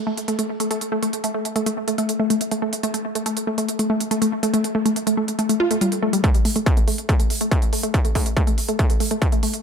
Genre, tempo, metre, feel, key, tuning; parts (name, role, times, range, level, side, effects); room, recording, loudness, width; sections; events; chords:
driving peak-time techno; 141 BPM; 4/4; straight; A4 = 440 Hz
wide unison pluck; riff; 0.0-9.5 s; G3 to F4; -21 LUFS; equal; tube saturation, sidechain pumping, analog delay
electronic hi-hat; drums; 0.2-9.6 s; -28 LUFS; right 3 dB; sidechain pumping on hats, sidechain pumping on cymbals
electronic kick drum; drums; 6.2-9.3 s; -18 LUFS; equal; distortion, overdrive
light reverb; echo-heavy mix; -19 LUFS; side -6 dB against mid
0.0-6.2 A section; 6.2-9.6 B section
build-up 6.2-9.6